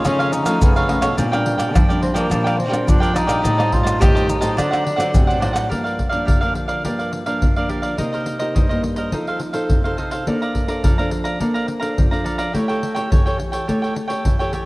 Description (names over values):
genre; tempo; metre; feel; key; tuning
samba and choro; 105 BPM; 4/4; straight; G minor; A4 = 440 Hz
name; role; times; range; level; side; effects
warm tenor saxophone; second line; 0.0-5.4 s; Bb3 to G4; -23 LUFS; equal; cassette tape
cavaquinho; accompaniment; 0.0-14.7 s; D4 to Bb5; -23 LUFS; right 2 dB; cassette tape
maracas, surdo, pandeiro and tamborim; percussion; 0.0-14.7 s; none; -19 LUFS; equal; none
nylon-string guitar; accompaniment; 0.1-14.7 s; F2 to C#5; -24 LUFS; equal; cassette tape
nylon-string guitar; bass; 0.1-5.7 s; A2 to F3; -24 LUFS; equal; none
room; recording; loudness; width
moderate lush hall reverb, RT60 2.6 s; home recording on cassette; -16 LUFS; side -21 dB against mid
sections
0.0-5.7 A section; 5.7-14.7 B section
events
tenor saxophone solo 0.0-5.7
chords
0.0 Faug7; 1.2 Bb69; 3.4 Am7b5; 4.6 D7b9; 5.7 Gm7; 8.0 Cm7; 9.1 F7; 10.3 Bbmaj9; 12.6 A7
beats
0.04 0.61 | 1.18 1.74 2.31 2.87 | 3.44 4.01 4.58 5.14 | 5.71 6.28 6.85 7.42 | 7.99 8.56 9.13 9.70 | 10.27 10.84 11.41 11.98 | 12.55 13.12 13.69 14.26